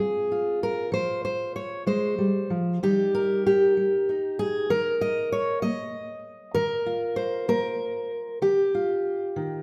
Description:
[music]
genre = folk, solo fingerstyle acoustic guitar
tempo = 64 BPM (dotted quarters)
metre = 6/8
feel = rubato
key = unclear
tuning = A4 = 440 Hz
[part]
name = fingerpicked steel-string acoustic guitar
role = solo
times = 0.0-9.6 s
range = Eb3 to Eb5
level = -26 LUFS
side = equal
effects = none
[sound]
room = moderate scoring stage reverb, RT60 1.5 s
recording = none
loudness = -26 LUFS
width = mono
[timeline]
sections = 0.0-9.6 A section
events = none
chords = 0.0 Fm; 2.8 Ebadd9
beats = 0.00 | 0.92 1.86 | 2.82 3.77 | 4.70 5.63 | 6.55 7.48 | 8.42 9.36

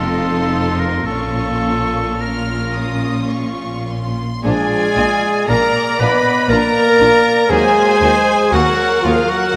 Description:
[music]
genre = classical, slow romantic movement for symphony orchestra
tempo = 52-61 BPM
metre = 3/4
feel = rubato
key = Bb minor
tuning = A4 = 440 Hz
[part]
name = rich studio violin section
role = melody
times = 0.0-9.6 s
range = F5 to F6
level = -25 LUFS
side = equal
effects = none
[part]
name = clear oboe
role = second line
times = 0.0-9.6 s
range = F4 to Cb5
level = -24 LUFS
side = equal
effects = none
[part]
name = rich studio violin section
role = second line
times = 0.0-9.1 s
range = Bb3 to Gb4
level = -30 LUFS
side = equal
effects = none
[part]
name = rich studio viola section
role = accompaniment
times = 0.0-9.5 s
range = Db4 to D5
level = -25 LUFS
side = equal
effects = none
[part]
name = rich studio cello section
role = bass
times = 0.0-9.1 s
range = Eb2 to Bb2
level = -26 LUFS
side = equal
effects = none
[part]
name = rich studio double bass section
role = bass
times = 0.0-9.1 s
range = F1 to Eb2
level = -27 LUFS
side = equal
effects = none
[part]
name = bright silver concert flute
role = second line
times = 4.4-9.6 s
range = Ab4 to Eb5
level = -24 LUFS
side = equal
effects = none
[part]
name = mellow clarinet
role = second line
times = 4.4-9.6 s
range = F4 to Cb5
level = -22 LUFS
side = equal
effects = none
[part]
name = mellow French horn section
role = sustained chords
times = 4.4-9.6 s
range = F3 to Cb4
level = -23 LUFS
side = equal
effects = none
[part]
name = mellow trombone section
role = sustained chords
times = 4.4-7.9 s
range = F3 to D4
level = -28 LUFS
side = equal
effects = none
[part]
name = clear trumpet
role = stabs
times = 4.4-9.6 s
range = F4 to Cb5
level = -20 LUFS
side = equal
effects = none
[sound]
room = wet concert hall reverb, RT60 2.2 s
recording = none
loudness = -15 LUFS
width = mono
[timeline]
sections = 0.0-4.4 A section; 4.4-9.6 B section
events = none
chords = 0.0 F7; 1.1 Bbm; 4.4 Bb7; 7.5 Ebm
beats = | 1.08 2.21 3.32 | 4.44 5.49 6.50 | 7.50 8.53 9.55

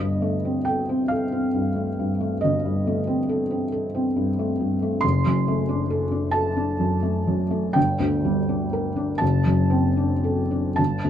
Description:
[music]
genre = classical, romantic nocturne for solo piano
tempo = 36-48 BPM (dotted quarters)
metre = 12/8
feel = rubato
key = unclear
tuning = A4 = 436 Hz
[part]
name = felt-muted upright piano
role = solo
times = 0.0-11.1 s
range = F#1 to C6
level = -20 LUFS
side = equal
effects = none
[sound]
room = light reverb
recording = dark, warm production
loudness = -20 LUFS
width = side -10 dB against mid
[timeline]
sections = 0.0-11.1 A section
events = none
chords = 0.0 Am7b5/G; 5.0 D7/F#; 7.8 Gm; 9.2 D7/F#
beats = 1.11 2.42 3.70 | 5.03 6.35 7.76 9.21 | 10.78

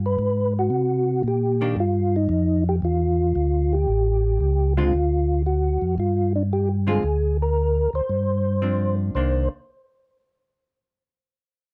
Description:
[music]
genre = jazz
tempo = 114 BPM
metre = 4/4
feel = swing 69% on 8ths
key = C minor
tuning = A4 = 441 Hz
[part]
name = mellow tonewheel organ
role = bass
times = 0.0-9.5 s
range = A1 to C3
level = -24 LUFS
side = equal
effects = chorus vibrato, slow rotary speaker
[part]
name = percussive tonewheel organ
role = melody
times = 0.1-9.5 s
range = D4 to C5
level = -26 LUFS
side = equal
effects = slow rotary speaker, chorus vibrato
[part]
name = hollow-body jazz guitar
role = accompaniment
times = 1.6-9.5 s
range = D3 to F4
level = -29 LUFS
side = equal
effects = none
[sound]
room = light reverb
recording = dark, warm production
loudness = -22 LUFS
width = mono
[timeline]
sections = 0.0-4.9 A section; 4.9-9.1 B section; 9.1-11.3 C section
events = none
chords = 0.0 G(b9); 0.7 Cm7; 2.8 Dmadd9; 3.9 A7; 4.9 Dm; 6.0 G7sus4; 7.0 Bb7/D; 8.1 G7sus4; 9.1 Cm9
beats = 0.19 | 0.72 1.25 1.77 2.30 | 2.83 3.35 3.88 4.40 | 4.93 5.46 5.98 6.51 | 7.04 7.56 8.09 8.62 | 9.14

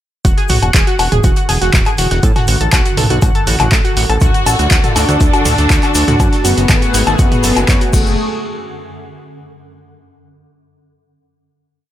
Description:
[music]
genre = melodic techno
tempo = 121 BPM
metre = 4/4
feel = straight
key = F# minor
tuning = A4 = 440 Hz
[part]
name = analog pluck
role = arpeggios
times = 0.2-8.2 s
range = F#4 to C#6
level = -20 LUFS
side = right 1 dB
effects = chorus, sidechain pumping, tape echo
[part]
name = fat analog bass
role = bass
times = 0.2-8.2 s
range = E1 to A2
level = -16 LUFS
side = equal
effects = sidechain pumping
[part]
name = swarming drone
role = drone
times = 1.1-8.2 s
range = F#2 to D3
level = -28 LUFS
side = right 2 dB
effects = none
[part]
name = electronic kick drum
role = drums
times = 0.2-8.0 s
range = none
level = -13 LUFS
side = equal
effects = overdrive
[part]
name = punchy analog drum machine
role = drums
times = 0.2-8.0 s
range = crash cymbal, handclaps, hi-hat, toms, woodblock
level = -17 LUFS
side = equal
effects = sidechain pumping on hats, sidechain pumping on toms, sidechain pumping on perc, sidechain pumping on cymbals
[part]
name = modern studio drum kit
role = drums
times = 0.3-7.8 s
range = hi-hat, shaker, snare drum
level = -30 LUFS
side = left 4 dB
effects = none
[part]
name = soft octave-layered synth lead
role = melody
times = 4.2-8.1 s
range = A3 to F#4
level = -20 LUFS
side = left 1 dB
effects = chorus, sidechain pumping, tape echo
[part]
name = warm studio violin section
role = second line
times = 4.2-8.1 s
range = A3 to F#4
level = -22 LUFS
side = left 3 dB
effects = sidechain pumping, tape echo
[part]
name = lush unison pad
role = sustained chords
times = 4.6-8.2 s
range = A3 to D5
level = -22 LUFS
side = equal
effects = chorus, phaser, sidechain pumping
[part]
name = egg shaker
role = percussion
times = 4.2-8.2 s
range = none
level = -25 LUFS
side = left 4 dB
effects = none
[sound]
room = small room ambience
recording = none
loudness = -10 LUFS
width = side -12 dB against mid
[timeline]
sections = 0.2-8.2 drop; 8.2-10.2 final hit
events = drop 0.2-8.2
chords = 0.2 E7; 2.2 Bm7/A; 4.2 D; 6.2 F#madd9; 8.2 N.C.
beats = | 0.25 0.74 1.24 1.74 | 2.23 2.73 3.22 3.72 | 4.21 4.71 5.21 5.70 | 6.20 6.70 7.19 7.69 | 8.18

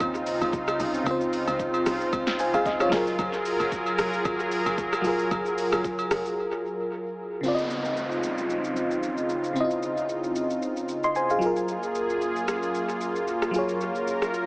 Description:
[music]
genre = amapiano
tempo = 113 BPM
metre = 4/4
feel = swing 55% on 16ths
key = Db major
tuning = A4 = 439 Hz
[part]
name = FM electric piano with tremolo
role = accompaniment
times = 0.0-14.5 s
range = Db3 to C6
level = -27 LUFS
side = equal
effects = dub echo
[part]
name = warm analog pad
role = sustained chords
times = 0.0-14.5 s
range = Gb2 to Bb4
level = -28 LUFS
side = equal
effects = chorus, sidechain pumping
[part]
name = woody log drum bass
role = bass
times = 0.0-6.4 s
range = F1 to Eb2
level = -36 LUFS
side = equal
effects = none
[part]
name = deep house drum kit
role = drums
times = 0.0-14.5 s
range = hi-hat, kick drum, rim click, shaker, snare drum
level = -33 LUFS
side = equal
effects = overdrive, dub echo
[part]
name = agogo bells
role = percussion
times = 0.0-6.1 s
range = none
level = -33 LUFS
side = right 1 dB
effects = dub echo
[part]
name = downlifter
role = sound effects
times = 7.4-11.7 s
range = none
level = -36 LUFS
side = equal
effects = none
[sound]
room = moderate plate reverb, RT60 1.1 s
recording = echo-heavy mix, AM radio sound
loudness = -24 LUFS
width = side -27 dB against mid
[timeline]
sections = 0.0-7.4 A section; 7.4-14.5 B section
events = drop 0.0-7.4; break 6.4-7.4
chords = 0.0 Dbmaj9; 2.9 Gbmaj9; 7.4 Dbmaj9; 11.4 Gbmaj9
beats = 0.00 0.53 | 1.06 1.59 2.13 2.66 | 3.19 3.72 4.25 4.78 | 5.31 5.84 6.37 6.91 | 7.44 7.97 8.50 9.03 | 9.56 10.09 10.62 11.15 | 11.68 12.21 12.75 13.28 | 13.81 14.34

